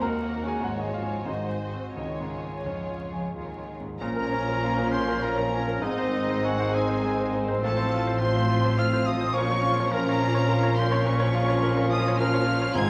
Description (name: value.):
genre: classical, romantic movement for piano and orchestra.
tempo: 85-111 BPM.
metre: 3/4.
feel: rubato.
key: Db major, Bb minor from 4.0 s.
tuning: A4 = 440 Hz.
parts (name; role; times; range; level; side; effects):
clear concert grand piano; melody; 0.0-12.9 s; Db2 to Bb5; -32 LUFS; equal; none.
clear studio violin section; melody; 0.0-12.9 s; Db5 to Ab6; -39 LUFS; equal; none.
warm studio violin section; second line; 0.0-12.9 s; Db4 to C5; -39 LUFS; equal; none.
rich studio viola section; accompaniment; 0.0-12.9 s; F3 to Db5; -38 LUFS; equal; none.
dark French horn section; sustained chords; 0.0-12.9 s; Db3 to F4; -37 LUFS; equal; none.
rich studio cello section; bass; 0.0-12.9 s; Eb2 to F3; -36 LUFS; equal; none.
rich studio double bass section; bass; 0.0-12.9 s; Ab1 to F2; -33 LUFS; equal; none.
bright clarinet; second line; 4.0-12.9 s; C4 to Db4; -37 LUFS; equal; none.
bright silver concert flute; second line; 4.0-12.9 s; Eb5 to Ab6; -36 LUFS; equal; none.
warm oboe; second line; 4.0-12.9 s; Eb4 to Ab5; -36 LUFS; equal; none.
dark bassoon; accompaniment; 4.0-12.9 s; Eb3 to F3; -36 LUFS; equal; none.
clear trombone section; sustained chords; 4.0-12.9 s; F2 to Ab3; -38 LUFS; equal; none.
timpani; percussion; 12.8-12.9 s; Ab2; -32 LUFS; equal; none.
room: wet recital hall reverb, RT60 1.5 s.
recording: worn, warbling old tape, cassette tape, vinyl crackle, warbly pitch drift.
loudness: -26 LUFS.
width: mono.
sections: 0.0-4.0 A section; 4.0-12.9 B section.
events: none.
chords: 0.0 Ebm7; 0.6 Db/Ab; 1.3 Ab7; 2.0 Db; 4.0 Bbm; 5.8 Ab; 7.6 F/A; 9.3 Bbm.